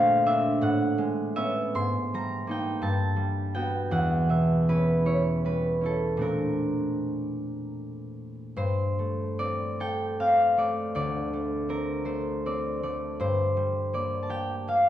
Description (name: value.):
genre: classical, solo harp piece.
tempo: 47-57 BPM (dotted quarters).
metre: 6/8.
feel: rubato.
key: G minor from 8.6 s.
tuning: A4 = 439 Hz.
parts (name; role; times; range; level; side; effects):
concert harp; solo; 0.0-14.9 s; D2 to C6; -24 LUFS; equal; none.
room: moderate recital hall reverb, RT60 1.4 s.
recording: dark, warm production.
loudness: -24 LUFS.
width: side -11 dB against mid.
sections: 0.0-8.6 A section; 8.6-14.9 B section.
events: none.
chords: 0.0 Bbmaj9; 0.6 Amaj9; 1.8 Abmaj9; 2.8 Gmaj9; 3.9 Em6; 6.2 Bbmaj9; 8.6 Gm11; 10.9 Dm7; 13.2 Gm7.